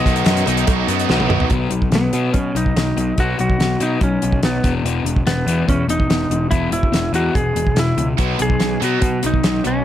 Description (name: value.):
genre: classic rock.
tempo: 144 BPM.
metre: 4/4.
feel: straight.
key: B major.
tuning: A4 = 444 Hz.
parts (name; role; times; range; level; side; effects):
clean lap steel guitar; melody; 0.0-9.8 s; B3 to D#5; -22 LUFS; right 1 dB; slapback echo.
tonewheel organ; sustained chords; 0.0-1.5 s; B3 to D#5; -29 LUFS; right 4 dB; none.
crunchy overdriven guitar; riff; 0.0-9.8 s; E2 to B3; -22 LUFS; left 7 dB; spring reverb.
tight distorted guitar; riff; 0.0-1.5, 8.2-9.8 s; B2 to D#4; -23 LUFS; right 16 dB; distortion.
fuzz picked electric bass; bass; 0.1-9.8 s; E1 to B2; -22 LUFS; right 1 dB; overdrive.
damped 70s drum kit; drums; 0.1-9.7 s; hi-hat, kick drum, snare drum, toms; -20 LUFS; equal; none.
cowbell; percussion; 0.2-1.4 s; none; -31 LUFS; right 12 dB; none.
room: little or no reverb.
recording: none.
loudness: -15 LUFS.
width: side -11 dB against mid.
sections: 0.0-1.5 A section; 1.5-9.8 B section.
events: drum fill 1.1-1.5.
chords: 0.0 B; 1.5 Bsus2; 4.6 E5; 8.2 B5.